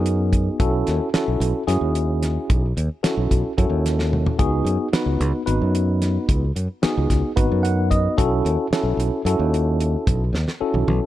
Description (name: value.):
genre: electric jazz fusion.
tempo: 222 BPM (eighths).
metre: 7/8.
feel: straight.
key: unclear.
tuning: A4 = 438 Hz.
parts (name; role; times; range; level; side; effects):
tine electric piano; accompaniment; 0.0-11.1 s; B3 to F#5; -22 LUFS; equal; medium stereo tremolo.
fingered electric bass; bass; 0.0-11.0 s; G#1 to F#2; -21 LUFS; equal; none.
damped 70s drum kit; drums; 0.1-11.0 s; hi-hat, kick drum, snare drum, toms; -23 LUFS; equal; none.
room: little or no reverb.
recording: dark, warm production.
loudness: -18 LUFS.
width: side -14 dB against mid.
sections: 0.0-11.1 A section.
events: drum fill 4.0-4.4, 10.3-11.1; tine electric piano fill 7.4-8.2.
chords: 0.0 C#9sus4 (rootless); 0.6 B9sus4; 4.4 C#9sus4; 8.2 B9sus4.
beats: 0.06 0.33 | 0.60 0.87 1.14 1.41 1.68 1.95 2.22 | 2.49 2.77 3.04 3.31 3.58 3.85 4.12 | 4.39 4.66 4.93 5.20 5.47 5.74 6.01 | 6.29 6.56 6.83 7.10 7.37 7.64 7.91 | 8.18 8.45 8.72 8.99 9.26 9.53 9.80 | 10.07 10.34 10.62 10.88.